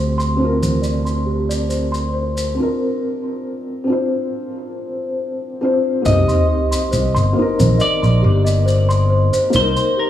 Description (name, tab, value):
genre	trip hop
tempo	69 BPM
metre	4/4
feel	swing 53% on 16ths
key	C minor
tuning	A4 = 440 Hz
part	felt-muted upright piano	accompaniment	0.0-10.1 s	Bb3 to C5	-21 LUFS	left 1 dB	tremolo, tape echo
part	small celesta	arpeggios	0.0-10.1 s	G4 to C6	-22 LUFS	equal	low-pass filter, tape echo
part	modern bright fingered electric bass	bass	0.0-9.7 s	G1 to D2	-17 LUFS	equal	none
part	maracas and congas	percussion	0.2-9.9 s	none	-26 LUFS	equal	none
part	clean electric guitar	melody	6.1-10.1 s	Bb4 to Eb5	-21 LUFS	equal	tape echo
part	sub drop	sound effects	6.1-9.5 s	none	-22 LUFS	equal	none
room	light reverb, small room ambience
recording	studio reverb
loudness	-15 LUFS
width	side -11 dB against mid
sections	0.0-6.1 A section; 6.1-10.1 B section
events	filter sweep on celesta 0.0-6.1; break 2.6-6.1; impact 6.1-9.5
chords	0.0 G7sus4/D; 6.1 Cm9